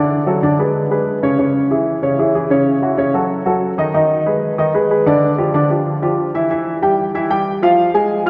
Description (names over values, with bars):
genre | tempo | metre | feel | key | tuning
jazz | 188 BPM | 4/4 | straight | unclear | A4 = 440 Hz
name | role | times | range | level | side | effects
warm upright piano | solo | 0.0-8.3 s | C#3 to F6 | -16 LUFS | equal | none
room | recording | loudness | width
wet church reverb, RT60 3.4 s | recorded in a church or concert hall | -16 LUFS | mono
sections
0.0-6.5 A section; 6.5-8.3 B section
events
none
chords
0.1 Bm7; 0.7 G#madd11; 1.4 C#m; 2.7 F#m7; 3.3 D#dim; 3.9 G#m; 5.2 G5; 6.5 Em; 7.8 Fm